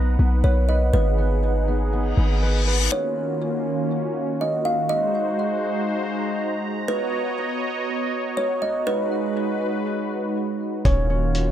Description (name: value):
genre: hip hop, atmospheric cloud-rap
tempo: 121 BPM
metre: 4/4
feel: half-time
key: unclear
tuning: A4 = 440 Hz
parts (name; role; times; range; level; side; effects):
- warm analog pad; sustained chords; 0.0-11.5 s; Eb3 to A#5; -26 LUFS; equal; chorus, sidechain pumping
- concert harp; arpeggios; 0.0-5.3, 10.8-11.5 s; B3 to B4; -31 LUFS; right 2 dB; tape echo
- warm 808-style bass; bass; 0.0-2.9, 10.9-11.5 s; Eb1 to B1; -20 LUFS; equal; none
- kalimba; melody; 0.4-11.5 s; Cb5 to F5; -26 LUFS; right 1 dB; tape echo
- reverse cymbal; sound effects; 2.1-2.9 s; none; -26 LUFS; left 7 dB; none
- trip hop sampler-style drum kit; drums; 10.9-11.5 s; hi-hat, kick drum; -22 LUFS; equal; none
room: light reverb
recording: none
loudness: -20 LUFS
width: side -10 dB against mid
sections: 0.0-2.9 A section; 2.9-11.5 B section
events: reverse cymbal 2.1-2.9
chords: 0.0 Bmaj7; 0.9 Abm7; 2.9 Ebm9; 4.9 Ab7; 6.9 Bmaj7; 8.9 Abm7; 10.9 Ebm9